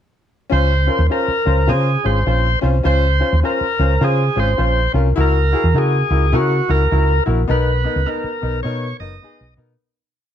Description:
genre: uptempo 1960s-style soul.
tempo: 104 BPM.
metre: 4/4.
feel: swing 62% on 8ths.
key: Db major.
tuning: A4 = 436 Hz.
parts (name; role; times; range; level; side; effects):
overdriven tonewheel organ; melody; 0.5-9.5 s; Gb4 to Eb5; -20 LUFS; right 1 dB; slow rotary speaker.
bright upright piano; accompaniment; 0.5-9.7 s; Cb4 to C5; -21 LUFS; left 4 dB; none.
hollow-body short-scale fingered electric bass; bass; 0.5-9.8 s; Gb1 to Db3; -16 LUFS; right 1 dB; none.
room: light reverb.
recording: dark, warm production.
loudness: -14 LUFS.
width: side -10 dB against mid.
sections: 0.5-9.8 verse.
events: fade-out 7.5-9.8.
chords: 0.5 Dbmaj7; 5.2 Gb7/Db; 7.5 Cbmaj7.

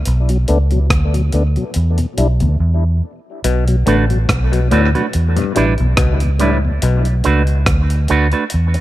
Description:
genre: dub reggae.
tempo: 71 BPM.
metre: 4/4.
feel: swing 56% on 16ths.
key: B minor.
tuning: A4 = 440 Hz.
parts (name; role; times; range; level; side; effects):
vintage muted fingered electric bass; bass; 0.0-8.7 s; A1 to E2; -14 LUFS; equal; none.
breakbeat sampler-style drum kit; drums; 0.1-8.8 s; hi-hat, kick drum, rim click; -20 LUFS; equal; overdrive.
mellow tonewheel organ; accompaniment; 0.3-6.7 s; E2 to E4; -22 LUFS; left 3 dB; overdrive, chorus vibrato, slow rotary speaker, tape echo.
clav; arpeggios; 3.4-7.0 s; G2 to D3; -22 LUFS; left 7 dB; tape echo.
electric guitar with an envelope filter; accompaniment; 3.9-8.8 s; G3 to B4; -19 LUFS; right 5 dB; tape echo.
room: little or no reverb.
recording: none.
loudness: -13 LUFS.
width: side -15 dB against mid.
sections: 0.0-8.8 A section.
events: break 0.0-3.4.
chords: 0.1 Bm7; 1.8 E7(no3); 3.4 Bm7; 5.1 Em7; 6.8 Bm7.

